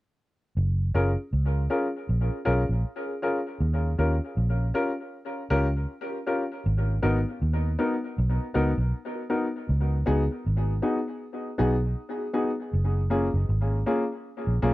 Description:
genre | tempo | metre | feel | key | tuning
lovers rock reggae | 79 BPM | 4/4 | swing 58% on 16ths | F# major | A4 = 440 Hz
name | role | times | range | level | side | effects
vintage muted fingered electric bass | bass | 0.6-14.7 s | F#1 to D#2 | -24 LUFS | equal | none
warm baby grand piano | accompaniment | 0.9-14.7 s | A#3 to A#4 | -28 LUFS | left 2 dB | tape echo
room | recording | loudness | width
light reverb | dry, close 1970s-style studio recording | -24 LUFS | side -17 dB against mid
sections
0.6-12.7 A section; 12.7-14.7 B section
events
none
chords
0.6 F#maj7; 3.6 D#7; 6.6 G#m7; 9.7 C#7sus4; 12.7 F#maj7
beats
| 0.56 1.32 2.08 2.84 | 3.60 4.36 5.12 5.88 | 6.64 7.41 8.16 8.93 | 9.69 10.45 11.21 11.96 | 12.72 13.48 14.24

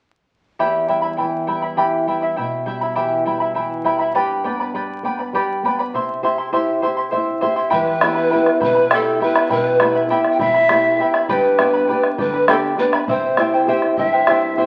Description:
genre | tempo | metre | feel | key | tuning
andean folk, Andean ensemble | 67 BPM (dotted quarters) | 6/8 | straight | E minor | A4 = 439 Hz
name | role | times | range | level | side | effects
charango | accompaniment | 0.6-14.7 s | E4 to C6 | -21 LUFS | equal | none
nylon-string guitar | accompaniment | 0.6-14.7 s | E2 to E5 | -26 LUFS | equal | none
breathy reedy pan flute | melody | 7.7-14.6 s | A4 to G5 | -20 LUFS | equal | none
bombo | percussion | 7.7-14.5 s | none | -24 LUFS | equal | none
room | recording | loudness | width
wet large studio reverb, RT60 0.9 s | very old 78 rpm record, vinyl crackle | -18 LUFS | mono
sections
0.6-7.7 A section; 7.7-14.7 B section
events
nylon-string guitar fill 6.8-7.7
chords
0.6 Em; 4.2 G; 5.9 C; 7.7 Em; 11.3 G; 13.1 C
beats
| 0.59 1.48 | 2.37 3.26 | 4.15 5.04 | 5.94 6.83 | 7.72 8.61 | 9.51 10.40 | 11.29 12.18 | 13.08 13.97

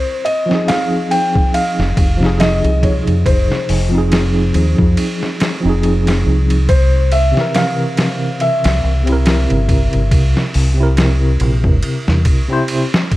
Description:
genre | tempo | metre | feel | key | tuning
trip hop | 70 BPM | 4/4 | swing 56% on 16ths | F minor | A4 = 443 Hz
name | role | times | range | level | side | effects
felt-muted upright piano | melody | 0.0-12.7 s | C5 to G5 | -20 LUFS | left 1 dB | vintage 12-bit sampler grit, tape echo
boom bap sampler-style drum kit | drums | 0.3-13.2 s | hi-hat, kick drum, ride cymbal, snare drum | -18 LUFS | equal | studio reverb
tine electric piano | accompaniment | 0.5-12.9 s | C3 to C5 | -18 LUFS | equal | medium stereo tremolo, tape echo
deep dub fingered electric bass | bass | 1.8-12.2 s | F1 to F2 | -14 LUFS | equal | none
room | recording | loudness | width
digital ambience | dark, warm production, vinyl crackle | -12 LUFS | side -17 dB against mid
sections
0.0-13.2 A section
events
none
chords
0.0 Fm7; 6.7 C7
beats
0.69 1.54 2.40 | 3.26 4.11 4.97 5.83 | 6.68 7.54 8.40 9.26 | 10.11 10.97 11.83 12.69

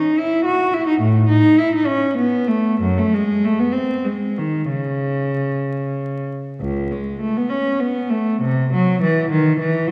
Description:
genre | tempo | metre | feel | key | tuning
classical, baroque-style suite movement for unaccompanied cello | 61-71 BPM (dotted quarters) | 6/8 | rubato | C# minor | A4 = 439 Hz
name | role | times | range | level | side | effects
dark cello | solo | 0.0-9.9 s | C#2 to F#4 | -19 LUFS | equal | none
room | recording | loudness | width
wet concert hall reverb, RT60 1.9 s | recorded in a church or concert hall, vinyl crackle | -19 LUFS | mono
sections
0.0-6.6 A section; 6.6-9.9 B section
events
none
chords
none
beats
0.17 | 1.02 1.89 | 2.81 3.74 | 4.70 5.66 | 6.61 7.51 | 8.43 9.32

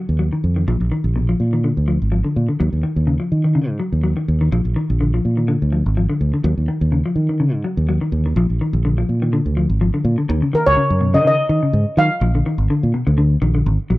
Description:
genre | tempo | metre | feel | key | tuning
afrobeat | 125 BPM | 4/4 | swing 54% on 16ths | Eb minor | A4 = 440 Hz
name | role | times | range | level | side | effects
semi-hollow electric guitar | arpeggios | 0.0-14.0 s | Cb3 to Gb3 | -21 LUFS | left 2 dB | none
fingered electric bass | bass | 0.1-14.0 s | Ab1 to Eb3 | -17 LUFS | equal | none
steel pan | melody | 10.5-13.4 s | Bb4 to F5 | -17 LUFS | equal | none
room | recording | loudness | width
little or no reverb | dry, close 1970s-style studio recording | -15 LUFS | side -18 dB against mid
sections
0.0-10.3 A section; 10.3-14.0 B section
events
none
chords
0.0 Ebm; 0.7 Bb; 2.6 Ebm7; 4.5 Bb; 6.4 Ebm7; 8.4 Bb; 10.3 Ebm7; 12.2 Bb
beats
0.19 | 0.68 1.16 1.64 2.12 | 2.60 3.08 3.56 4.04 | 4.53 5.01 5.49 5.97 | 6.45 6.93 7.41 7.89 | 8.37 8.85 9.33 9.81 | 10.29 10.77 11.25 11.73 | 12.21 12.69 13.17 13.65

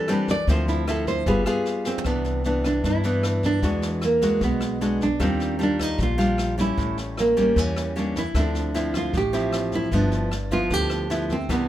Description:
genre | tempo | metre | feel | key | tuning
bossa nova | 152 BPM | 4/4 | straight | C major | A4 = 440 Hz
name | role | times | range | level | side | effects
nylon-string guitar | melody | 0.0-11.7 s | Bb3 to D5 | -25 LUFS | right 2 dB | none
nylon-string guitar | accompaniment | 0.0-11.7 s | G2 to Ab4 | -25 LUFS | left 1 dB | none
jazz brush drum kit | drums | 0.1-11.6 s | kick drum, rim click, snare drum, toms | -32 LUFS | equal | none
upright bass | bass | 0.5-11.7 s | G1 to G2 | -27 LUFS | equal | none
room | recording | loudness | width
light reverb | none | -21 LUFS | side -12 dB against mid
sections
0.0-2.1 A section; 2.1-11.7 B section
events
nylon-string guitar solo 0.0-2.1; drum fill 1.9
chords
0.5 Dm9; 1.3 G7b9; 2.1 Cmaj9; 3.6 E9; 5.2 Ebmaj9; 6.8 A7b9; 8.3 Dm9; 9.9 G6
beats
0.08 | 0.48 0.87 1.26 1.66 | 2.05 2.44 2.84 3.23 | 3.63 4.02 4.41 4.81 | 5.20 5.59 5.99 6.38 | 6.77 7.17 7.56 7.95 | 8.35 8.74 9.13 9.53 | 9.92 10.31 10.71 11.10 | 11.49

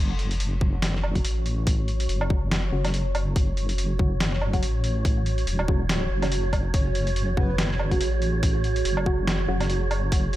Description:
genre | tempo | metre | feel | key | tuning
deep dubstep | 142 BPM | 4/4 | swing 56% on 16ths, half-time | F# minor | A4 = 439 Hz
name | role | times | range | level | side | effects
deep dark ambient pad | sustained chords | 0.1-10.4 s | F#4 to C#5 | -34 LUFS | right 4 dB | chorus, built-in reverb
deep soft wobble bass | bass | 0.0-10.4 s | E1 to A1 | -25 LUFS | equal | chorus, tube saturation
wind-like tuned noise texture | texture | 0.3-10.4 s | C#5 | -36 LUFS | right 4 dB | built-in reverb
trip hop sampler-style drum kit | drums | 0.2-10.4 s | hi-hat, snare drum, woodblock | -30 LUFS | equal | none
filtered dub chord stab | stabs | 0.6-9.7 s | C#3 to F#4 | -33 LUFS | left 1 dB | chorus, dub echo
electronic kick drum | drums | 0.6-10.2 s | none | -23 LUFS | equal | none
breathy flute-like synth lead | melody | 6.7-7.7 s | B4 to C#5 | -36 LUFS | equal | analog chorus, cassette tape, dub echo
room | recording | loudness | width
little or no reverb | none | -22 LUFS | side -14 dB against mid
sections
0.0-10.4 A section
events
filter sweep on synth stab 0.0-10.4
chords
0.0 F#5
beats
0.40 0.82 1.25 | 1.67 2.09 2.51 2.94 | 3.36 3.78 4.20 4.63 | 5.05 5.47 5.89 6.32 | 6.74 7.16 7.58 8.01 | 8.43 8.85 9.28 9.70 | 10.12

